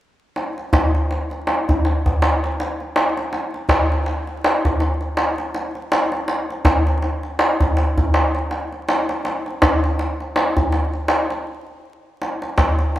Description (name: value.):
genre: trip hop.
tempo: 81 BPM.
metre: 4/4.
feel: swing 57% on 16ths.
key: none.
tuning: none.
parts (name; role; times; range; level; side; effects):
darbuka; percussion; 0.4-13.0 s; none; -17 LUFS; equal; none.
room: light reverb.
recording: vinyl crackle.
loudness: -18 LUFS.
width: side -14 dB against mid.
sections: 0.4-12.2 A section.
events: stop 11.5-12.2.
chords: none.